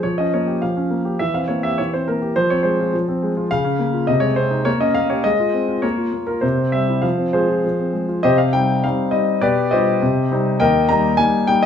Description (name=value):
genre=classical-period piano sonatina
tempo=102 BPM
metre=2/4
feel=straight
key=F minor, C minor from 8.2 s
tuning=A4 = 441 Hz
part: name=clear concert grand piano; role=solo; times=0.0-11.7 s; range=Eb2 to Bb5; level=-16 LUFS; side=left 1 dB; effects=none
room=moderate large studio reverb, RT60 0.8 s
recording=small room ambience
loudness=-16 LUFS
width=side -8 dB against mid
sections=0.0-8.2 A section; 8.2-11.7 B section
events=none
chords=0.0 Gm7b5/F; 1.2 C7/E; 2.4 Fm; 3.5 Bbm/Db; 4.1 Ab/C; 4.7 Gdim/Bb; 5.3 Fm/Ab; 5.8 Bbm; 6.4 C; 7.0 Fm; 8.2 Cm; 9.4 G7/B; 10.0 Cm; 10.6 Eb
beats=| 0.04 0.62 | 1.20 1.78 | 2.36 2.94 | 3.51 4.09 | 4.67 5.25 | 5.84 6.43 | 7.03 7.64 | 8.24 8.84 | 9.42 10.01 | 10.60 11.18